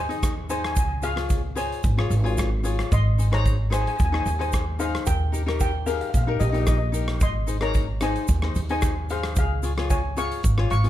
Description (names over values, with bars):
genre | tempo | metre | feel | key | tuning
calypso | 112 BPM | 4/4 | straight | Ab major | A4 = 440 Hz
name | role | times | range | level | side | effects
steel pan | melody | 0.0-10.9 s | G4 to Db6 | -29 LUFS | left 1 dB | plate reverb
upright bass | bass | 0.0-10.9 s | Ab1 to Eb2 | -24 LUFS | equal | none
cavaquinho | accompaniment | 0.1-10.9 s | Eb4 to Eb5 | -30 LUFS | left 6 dB | none
big rock drum kit | drums | 0.1-10.9 s | hi-hat, kick drum, rim click | -26 LUFS | equal | none
tube shaker | percussion | 0.2-10.8 s | none | -39 LUFS | right 6 dB | none
room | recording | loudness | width
little or no reverb | dark, warm production | -21 LUFS | side -13 dB against mid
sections
0.0-10.9 A section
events
none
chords
0.0 Ab; 0.8 Db; 2.9 Ab; 5.1 Eb; 7.2 Ab; 9.4 Db